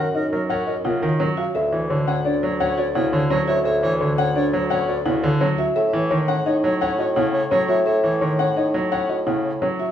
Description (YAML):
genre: classical, minimalist pattern music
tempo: 171 BPM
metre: 6/4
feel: straight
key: unclear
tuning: A4 = 437 Hz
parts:
  - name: dark grand piano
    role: melody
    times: 0.0-9.9 s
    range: C#5 to F#5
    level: -25 LUFS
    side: left 5 dB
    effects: none
  - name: mellow clarinet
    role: second line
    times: 0.0-9.7 s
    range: A#4 to C#5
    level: -26 LUFS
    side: left 1 dB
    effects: none
  - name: bright grand piano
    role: accompaniment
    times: 0.0-9.8 s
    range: C#3 to C#4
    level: -24 LUFS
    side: right 1 dB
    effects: none
  - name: buzzing marimba with soft mallets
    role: arpeggios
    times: 0.0-9.9 s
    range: C#4 to C#5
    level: -26 LUFS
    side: right 2 dB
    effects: none
  - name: mellow bassoon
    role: bass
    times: 0.0-9.9 s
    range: D2 to A2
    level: -26 LUFS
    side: equal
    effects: none
room: wet large studio reverb, RT60 0.9 s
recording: heard from further back in the room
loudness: -18 LUFS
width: side -10 dB against mid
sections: 0.0-9.9 A section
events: none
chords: 0.0 F#maj7; 1.5 Dmaj7; 5.8 A6